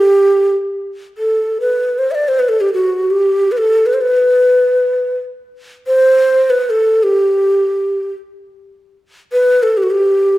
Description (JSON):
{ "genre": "Arabic maqam ensemble", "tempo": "free time", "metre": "none", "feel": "none", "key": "G maqam ajam", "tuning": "A4 = 440 Hz", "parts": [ { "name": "breathy mellow ney", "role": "solo", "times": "0.0-10.4 s", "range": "F#4 to E5", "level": "-11 LUFS", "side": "equal", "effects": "slapback echo" } ], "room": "wet recital hall reverb, RT60 1.7 s", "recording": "none", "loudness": "-12 LUFS", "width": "side -16 dB against mid", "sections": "0.7-10.4 A section", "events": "none", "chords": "none" }